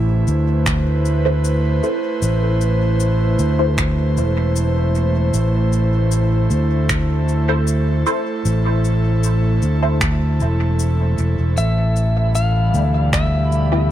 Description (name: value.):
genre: ambient dub.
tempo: 77 BPM.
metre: 4/4.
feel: straight.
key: A minor.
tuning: A4 = 442 Hz.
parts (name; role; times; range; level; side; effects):
airy breathy pad; sustained chords; 0.0-13.9 s; B2 to C5; -23 LUFS; right 3 dB; chorus.
fingered electric bass; bass; 0.0-13.9 s; E1 to D2; -16 LUFS; equal; tube saturation.
electronic shaker and finger snaps; drums; 0.3-13.7 s; none; -26 LUFS; equal; overdrive, dub echo.
electronic kick drum; drums; 0.7-13.3 s; none; -23 LUFS; equal; none.
filtered dub chord stab; stabs; 1.3-13.9 s; B3 to C5; -24 LUFS; equal; phaser, analog chorus, dub echo.
clean lap steel guitar; melody; 11.6-13.9 s; E5 to F5; -23 LUFS; left 1 dB; vintage 12-bit sampler grit, dub echo.
backwards swelling texture; texture; 12.2-13.9 s; G3 to B5; -28 LUFS; left 2 dB; built-in reverb.
room: little or no reverb.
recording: none.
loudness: -15 LUFS.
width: side -12 dB against mid.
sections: 0.0-13.9 A section.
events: none.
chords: 0.0 Am; 11.6 Em.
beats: 0.66 1.44 | 2.22 3.00 3.78 4.56 | 5.34 6.12 6.90 7.68 | 8.46 9.23 10.01 10.79 | 11.57 12.35 13.13 13.91.